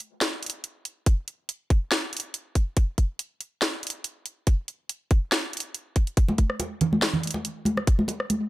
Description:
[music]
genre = dubstep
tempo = 141 BPM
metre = 4/4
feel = swing 54% on 16ths, half-time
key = none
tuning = none
[part]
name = garage drum kit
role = drums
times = 0.0-8.4 s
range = hi-hat, rim click, snare drum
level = -26 LUFS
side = equal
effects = none
[part]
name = electronic kick drum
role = drums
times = 1.1-8.0 s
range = none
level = -20 LUFS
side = equal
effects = none
[part]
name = congas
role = percussion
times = 6.3-8.4 s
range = none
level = -25 LUFS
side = right 1 dB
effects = dub echo
[sound]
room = light reverb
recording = none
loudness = -24 LUFS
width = side -17 dB against mid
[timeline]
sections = 0.0-8.5 A section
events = none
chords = none

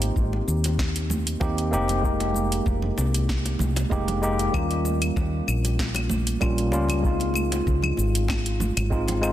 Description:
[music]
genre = sunset chillout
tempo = 96 BPM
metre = 4/4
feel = straight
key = F minor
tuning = A4 = 440 Hz
[part]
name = tine electric piano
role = accompaniment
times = 0.0-9.3 s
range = G3 to G4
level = -26 LUFS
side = equal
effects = auto-pan, ping-pong delay
[part]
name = woody fretless electric bass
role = bass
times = 0.0-9.3 s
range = F1 to Eb2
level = -25 LUFS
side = equal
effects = none
[part]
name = deep house drum kit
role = drums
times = 0.0-9.3 s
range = cabasa, claves, hi-hat, snare drum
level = -31 LUFS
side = left 1 dB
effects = overdrive, studio ambience
[part]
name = electronic kick drum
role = drums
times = 0.2-9.0 s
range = none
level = -28 LUFS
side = equal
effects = overdrive, studio ambience
[part]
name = bongos and congas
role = percussion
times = 0.3-9.2 s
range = none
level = -34 LUFS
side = right 1 dB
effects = none
[sound]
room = light reverb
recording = dense, heavily limited modern master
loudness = -22 LUFS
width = side -12 dB against mid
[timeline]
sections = 0.0-9.3 A section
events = none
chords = 0.0 Fm11; 4.5 Eb9; 7.0 Dbmaj9

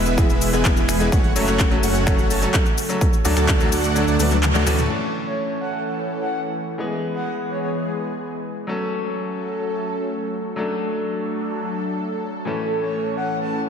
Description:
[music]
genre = EDM, festival progressive house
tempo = 127 BPM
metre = 4/4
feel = straight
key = A major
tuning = A4 = 442 Hz
[part]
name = lush unison pad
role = sustained chords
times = 0.0-13.7 s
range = B2 to A4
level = -27 LUFS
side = equal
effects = chorus, phaser, sidechain pumping
[part]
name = dense compressed supersaw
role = riff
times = 0.0-4.9 s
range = G#3 to A5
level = -23 LUFS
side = right 1 dB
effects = sidechain pumping, low-pass filter, ping-pong delay
[part]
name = detuned saw bass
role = bass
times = 0.0-4.9 s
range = E1 to D2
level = -23 LUFS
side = equal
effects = sidechain pumping
[part]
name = big-room dance drum kit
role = drums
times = 0.1-5.0 s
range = cabasa, crash cymbal, finger snaps, handclaps, hi-hat, toms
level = -25 LUFS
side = left 1 dB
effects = low-pass filter on hats, low-pass filter on perc, low-pass filter on snare, low-pass filter on toms, low-pass filter on cymbals, low-pass filter on room
[part]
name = bright concert grand piano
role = accompaniment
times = 0.2-13.7 s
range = A2 to B4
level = -26 LUFS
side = left 2 dB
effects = sidechain pumping, ping-pong delay
[part]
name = electronic kick drum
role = drums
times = 0.2-3.6 s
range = none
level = -19 LUFS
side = equal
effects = none
[part]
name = breathy flute-like synth lead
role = melody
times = 5.3-7.7, 12.8-13.6 s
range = C#5 to A5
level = -28 LUFS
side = right 1 dB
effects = lush chorus, ping-pong delay
[sound]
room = moderate lush hall reverb, RT60 1.9 s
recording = dreamy mix soaked in reverb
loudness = -19 LUFS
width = side -7 dB against mid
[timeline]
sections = 0.0-4.9 A section; 4.9-13.7 B section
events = drop 0.0-4.9; kick drops out 4.0-4.9; drum fill 4.2-4.9; band accent 4.4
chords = 0.0 E; 1.1 F#m; 3.0 D; 4.9 A; 6.8 E; 8.7 F#m; 10.6 D; 12.5 A

